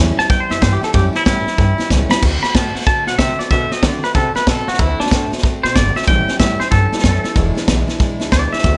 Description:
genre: rockabilly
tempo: 187 BPM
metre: 4/4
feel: swing 64% on 8ths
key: A mixolydian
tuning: A4 = 435 Hz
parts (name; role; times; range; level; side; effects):
- picked steel-string acoustic guitar; accompaniment; 0.0-8.8 s; E2 to F#4; -26 LUFS; equal; none
- upright bass; bass; 0.0-8.8 s; E1 to D3; -21 LUFS; equal; none
- twangy electric guitar; melody; 0.2-8.8 s; D4 to B5; -21 LUFS; equal; tape echo
- vintage drum kit; drums; 0.2-8.7 s; crash cymbal, hi-hat, kick drum, snare drum; -19 LUFS; equal; none
room: small room ambience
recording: nothing above 10.5 kHz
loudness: -16 LUFS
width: mono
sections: 0.0-8.8 A section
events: clean electric guitar solo 0.0-8.8; drum fill 1.9-2.2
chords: 0.0 A7; 2.2 D7; 6.1 A7; 7.4 E7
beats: 0.30 0.62 | 0.94 1.26 1.58 1.90 | 2.22 2.54 2.87 3.19 | 3.51 3.83 4.15 4.47 | 4.79 5.11 5.43 5.76 | 6.08 6.40 6.72 7.04 | 7.36 7.68 8.00 8.32 | 8.65

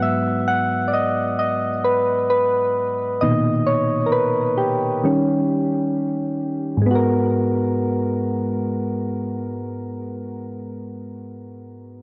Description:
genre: R&B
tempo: 66 BPM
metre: 4/4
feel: swing 58% on 16ths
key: G# minor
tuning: A4 = 440 Hz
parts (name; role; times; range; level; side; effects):
- soft electric-piano-like synth keys; solo; 0.0-12.0 s; G#2 to F#5; -22 LUFS; equal; chorus, tape echo
room: light reverb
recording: dry, gritty hardware recording, transformer saturation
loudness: -21 LUFS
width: mono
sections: 0.0-6.9 A section; 6.9-10.5 B section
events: synth keys solo 0.0-6.9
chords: 0.0 G#m7; 3.2 Bmaj7; 5.0 D#7; 6.9 G#m7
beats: 0.49 1.41 2.31 | 3.22 4.13 5.04 5.95 | 6.86 7.77 8.68 9.59

